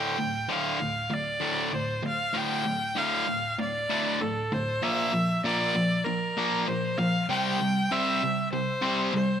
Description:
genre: rock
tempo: 97 BPM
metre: 4/4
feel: straight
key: D minor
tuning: A4 = 441 Hz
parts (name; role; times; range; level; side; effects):
- bright viola; melody; 0.0-9.4 s; A4 to G5; -28 LUFS; equal; slapback echo
- cranked stack guitar; riff; 0.0-9.4 s; D2 to C4; -27 LUFS; equal; overdrive
room: moderate plate reverb, RT60 3.2 s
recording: none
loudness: -25 LUFS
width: side -8 dB against mid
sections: 0.0-9.4 A section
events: build-up 0.0-9.4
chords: 0.0 Dm; 4.8 Bb; 7.3 C

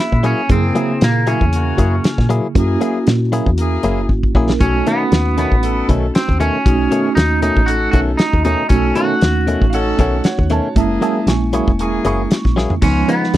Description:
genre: straight-eighth soul blues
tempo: 117 BPM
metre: 4/4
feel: swing 55% on 16ths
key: F# mixolydian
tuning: A4 = 440 Hz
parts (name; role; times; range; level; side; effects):
- electric guitar at the edge of break-up; melody; 0.0-13.4 s; A#3 to F#4; -20 LUFS; right 1 dB; none
- mellow tine electric piano; accompaniment; 0.0-13.4 s; C#3 to A#4; -20 LUFS; right 3 dB; medium stereo tremolo
- woody FM bass; bass; 0.1-13.4 s; E1 to A#2; -18 LUFS; equal; none
- warm soul drum kit; drums; 0.1-13.4 s; hi-hat, kick drum, snare drum, splash cymbal, toms; -16 LUFS; equal; none
- direct-recorded clean electric guitar; stabs; 0.2-13.3 s; B2 to G#4; -20 LUFS; left 4 dB; harmonic tremolo
- warm horn section; sustained chords; 0.5-13.3 s; A#3 to A4; -25 LUFS; left 2 dB; none
- bright upright piano; second line; 9.7-12.6 s; C#5 to C#6; -25 LUFS; right 6 dB; tape echo
room: little or no reverb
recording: dry, close 1970s-style studio recording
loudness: -13 LUFS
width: side -14 dB against mid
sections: 0.0-13.4 A section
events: drum fill 4.1-4.6, 12.6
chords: 0.0 F#9; 4.6 B9; 10.8 F#9; 12.8 C#9

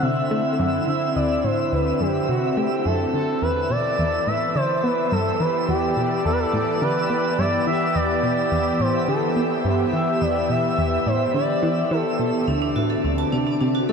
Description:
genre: ambient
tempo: 106 BPM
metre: 4/4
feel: straight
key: E minor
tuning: A4 = 440 Hz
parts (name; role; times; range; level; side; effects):
- expressive synth lead; melody; 0.0-12.5 s; F#4 to E5; -24 LUFS; equal; chorus, ping-pong delay
- lush unison pad; sustained chords; 0.0-13.9 s; D3 to E5; -24 LUFS; equal; chorus
- plucky analog bass; riff; 0.0-13.9 s; D2 to B3; -25 LUFS; equal; lush chorus, ping-pong delay
- twinkling granular texture; texture; 0.0-13.9 s; D5 to E5; -31 LUFS; right 1 dB; built-in reverb
- vibraphone with hard mallets; arpeggios; 12.5-13.9 s; D4 to A5; -24 LUFS; right 1 dB; auto-pan, ping-pong delay
room: wet shimmer reverb, RT60 6.2 s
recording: none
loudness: -19 LUFS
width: side -5 dB against mid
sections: 0.0-13.9 A section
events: none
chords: 0.0 D7; 3.4 Em7; 12.5 D7

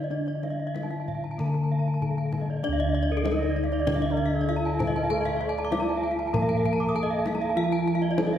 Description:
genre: Balinese gamelan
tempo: 97 BPM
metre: 4/4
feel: straight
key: D pelog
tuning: A4 = 440 Hz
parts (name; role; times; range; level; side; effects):
- gamelan-type bronze metallophone; melody; 0.0-8.4 s; D4 to Bb4-40c; -30 LUFS; equal; none
- gamelan-type bronze metallophone; accompaniment; 0.0-8.4 s; D3 to Bb3-40c; -32 LUFS; right 1 dB; none
- gamelan-type bronze metallophone; arpeggios; 0.0-8.3 s; A4-45c to Eb6; -32 LUFS; left 2 dB; none
- gamelan-type bronze metallophone; arpeggios; 0.0-8.4 s; Bb4-40c to D6; -33 LUFS; right 4 dB; none
- gamelan-type bossed gongs; bass; 0.0-8.4 s; D2 to A4-45c; -30 LUFS; left 1 dB; none
- kendang; percussion; 0.3-8.3 s; none; -34 LUFS; left 1 dB; none
- mellow bansuri; second line; 3.3-7.6 s; A4-41c to E5+44c; -36 LUFS; right 3 dB; none
room: wet concert hall reverb, RT60 2.2 s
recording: recorded in a church or concert hall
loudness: -24 LUFS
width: side -10 dB against mid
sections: 0.0-2.6 A section; 2.6-8.4 B section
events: none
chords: none

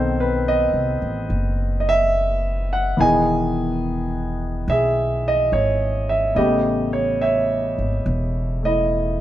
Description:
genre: jazz ballad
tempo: 71 BPM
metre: 4/4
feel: swing 68% on 8ths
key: unclear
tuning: A4 = 439 Hz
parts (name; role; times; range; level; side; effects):
- warm concert grand piano; accompaniment; 0.0-9.2 s; C#3 to G#5; -19 LUFS; right 1 dB; none
- upright bass; bass; 0.0-9.2 s; E1 to C2; -24 LUFS; equal; none
room: moderate large studio reverb, RT60 0.8 s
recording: none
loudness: -18 LUFS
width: side -13 dB against mid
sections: 0.0-9.2 A section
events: none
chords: 0.0 B7b9; 3.0 Emaj7; 6.4 A9

